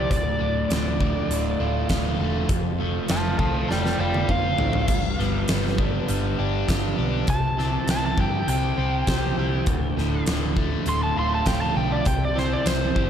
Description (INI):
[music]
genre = classic rock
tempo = 100 BPM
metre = 4/4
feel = straight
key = D dorian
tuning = A4 = 440 Hz
[part]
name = overdriven slide guitar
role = melody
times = 0.0-13.1 s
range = C5 to C6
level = -28 LUFS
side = equal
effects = slapback echo
[part]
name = overdriven electric guitar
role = riff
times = 0.0-13.1 s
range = D2 to C5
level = -29 LUFS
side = left 9 dB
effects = none
[part]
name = raw garage guitar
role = riff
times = 0.0-13.1 s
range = D2 to C5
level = -30 LUFS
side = right 10 dB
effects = overdrive, slapback echo
[part]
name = hollow-body short-scale picked electric bass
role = bass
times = 0.0-13.1 s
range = D1 to G2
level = -27 LUFS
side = equal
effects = none
[part]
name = huge arena drum kit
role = drums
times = 0.1-13.1 s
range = crash cymbal, hi-hat, kick drum, snare drum, toms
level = -26 LUFS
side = equal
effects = none
[sound]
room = moderate lush hall reverb, RT60 2.6 s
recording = big arena sound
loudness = -21 LUFS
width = side -9 dB against mid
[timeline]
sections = 0.0-13.1 A section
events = electric slide guitar solo 0.0-13.1; drum fill 3.7-4.9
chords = 0.1 Dm; 2.5 F; 4.9 G; 7.3 C; 9.7 Dm; 12.1 C